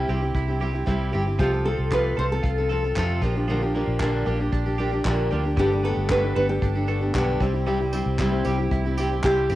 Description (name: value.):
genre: acoustic pop.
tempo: 115 BPM.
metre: 4/4.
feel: straight.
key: C major.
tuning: A4 = 440 Hz.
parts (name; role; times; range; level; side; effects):
fingerpicked steel-string acoustic guitar; accompaniment; 0.0-9.6 s; G2 to A4; -26 LUFS; equal; cassette tape.
twelve-string electric guitar; arpeggios; 0.0-9.6 s; F3 to A4; -33 LUFS; right 7 dB; cassette tape.
vintage muted fingered electric bass; bass; 0.0-9.6 s; G1 to F2; -25 LUFS; equal; none.
soft brush drum kit; drums; 0.3-9.6 s; handclaps, kick drum, tambourine; -29 LUFS; equal; cassette tape.
nylon-string guitar; melody; 1.4-9.6 s; G4 to C5; -24 LUFS; equal; cassette tape.
felt-muted upright piano; accompaniment; 5.6-9.6 s; G3 to C5; -32 LUFS; left 7 dB; cassette tape.
room: light reverb.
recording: home recording on cassette.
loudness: -21 LUFS.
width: side -15 dB against mid.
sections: 0.0-9.6 A section.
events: none.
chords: 0.0 C; 1.4 F/C; 3.2 Bb6; 5.6 Gadd9; 7.4 C.